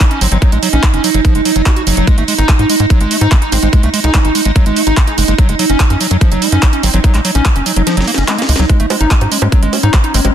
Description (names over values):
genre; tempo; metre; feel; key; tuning
psychedelic trance; 145 BPM; 4/4; straight; unclear; A4 = 442 Hz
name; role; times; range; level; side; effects
pulsing gated texture; sustained chords; 0.0-10.3 s; C#4 to D#4; -17 LUFS; right 4 dB; chorus, built-in reverb, sidechain pumping
overdriven acid bass; riff; 0.0-10.3 s; E#3 to F#4; -18 LUFS; left 1 dB; auto-pan, sidechain pumping, dub echo
drum and bass drum kit; drums; 0.0-10.3 s; bongos, handclaps, hi-hat, snare drum; -17 LUFS; right 2 dB; overdrive, studio reverb
electronic kick drum; drums; 0.0-10.0 s; none; -10 LUFS; equal; studio reverb
resonant blip pluck; second line; 0.2-0.7, 3.5-7.4, 10.1-10.3 s; G#3 to D#4; -28 LUFS; left 3 dB; chorus, cassette tape, sidechain pumping, high-pass filter, dub echo
tight sequencer bass; bass; 0.2-10.3 s; F#1 to G#2; -13 LUFS; equal; none
room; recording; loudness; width
little or no reverb; dense, heavily limited modern master; -9 LUFS; side -10 dB against mid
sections
0.0-10.3 A section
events
kick drops out 7.9-8.7; drum fill 7.9-8.7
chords
0.0 F#5; 2.1 G#5; 5.4 F#5; 8.7 G#5